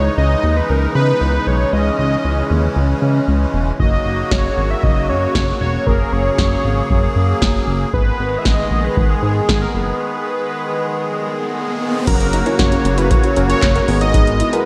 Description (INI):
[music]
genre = synth-pop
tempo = 116 BPM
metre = 4/4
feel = straight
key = unclear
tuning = A4 = 440 Hz
[part]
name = unison lead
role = melody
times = 0.0-14.7 s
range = G#4 to E5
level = -23 LUFS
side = equal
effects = diffuse ambient delay
[part]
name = musette accordion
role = sustained chords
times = 0.0-14.7 s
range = B2 to G#4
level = -24 LUFS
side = equal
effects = none
[part]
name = chorused synth bass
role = bass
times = 0.0-14.4 s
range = E1 to C#3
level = -20 LUFS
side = equal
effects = none
[part]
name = electro analog drum machine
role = drums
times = 3.8-14.7 s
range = crash cymbal, handclaps, hi-hat, kick drum, snare drum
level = -20 LUFS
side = equal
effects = none
[part]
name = riser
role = sound effects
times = 11.2-12.1 s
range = none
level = -30 LUFS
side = equal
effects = none
[part]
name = warm analog keys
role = accompaniment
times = 12.1-14.7 s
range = B3 to A#4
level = -24 LUFS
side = equal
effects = chorus
[part]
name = soft round pluck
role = arpeggios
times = 12.1-14.6 s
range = B3 to F#4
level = -27 LUFS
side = equal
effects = chorus, diffuse ambient delay
[sound]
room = wet lush hall reverb, RT60 1.7 s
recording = dreamy mix soaked in reverb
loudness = -17 LUFS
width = mono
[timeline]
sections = 0.0-12.1 A section; 12.1-14.7 B section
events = break 10.0-12.1; riser 11.2-12.1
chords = 0.0 C#madd9; 3.8 F#; 7.9 G#m; 12.1 F#; 13.9 G#madd9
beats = 0.18 0.69 1.21 | 1.73 2.25 2.76 3.28 | 3.80 4.31 4.83 5.35 | 5.87 6.38 6.90 7.42 | 7.93 8.45 8.97 9.49 | 10.00 10.52 11.04 11.56 | 12.07 12.59 13.11 13.62 | 14.14